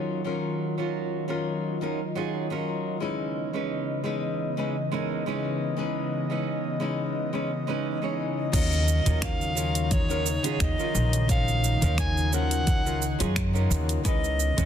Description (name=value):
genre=sunset chillout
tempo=87 BPM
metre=4/4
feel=swing 54% on 16ths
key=unclear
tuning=A4 = 440 Hz
part: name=flamenco guitar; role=accompaniment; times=0.0-14.7 s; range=F3 to Db5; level=-30 LUFS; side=moving between left 6 dB and right 5 dB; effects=auto-pan, ping-pong delay
part: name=airy breathy pad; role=sustained chords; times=0.0-14.7 s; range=Db3 to Eb5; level=-31 LUFS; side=equal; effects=chorus
part: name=clear soprano saxophone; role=melody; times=8.5-14.7 s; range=Db5 to Ab5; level=-30 LUFS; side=equal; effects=vintage 12-bit sampler grit, ping-pong delay
part: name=upright bass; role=bass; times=8.5-14.7 s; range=Bb1 to Gb2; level=-26 LUFS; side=equal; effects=none
part: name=deep house drum kit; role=drums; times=8.5-14.7 s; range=cabasa, crash cymbal, finger snaps, hi-hat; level=-32 LUFS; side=right 2 dB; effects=low-pass filter on hats, low-pass filter on perc, soft clipping on snare, low-pass filter on snare, low-pass filter on cymbals
part: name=electronic kick drum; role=drums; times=8.5-14.2 s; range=none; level=-27 LUFS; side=equal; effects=none
part: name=congas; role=percussion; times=9.1-14.7 s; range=none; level=-31 LUFS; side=right 2 dB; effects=none
room=light reverb, small room ambience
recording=dense, heavily limited modern master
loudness=-24 LUFS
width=side -9 dB against mid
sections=0.0-8.5 A section; 8.5-14.7 B section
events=filter sweep on analog synth pad 0.0-8.5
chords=0.0 Ebm9; 3.0 Dbm9; 8.5 Ebm9; 14.0 Dbm9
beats=| 0.26 0.95 1.64 2.33 | 3.02 3.71 4.39 5.08 | 5.77 6.46 7.15 7.84 | 8.53 9.22 9.91 10.60 | 11.29 11.98 12.67 13.36 | 14.05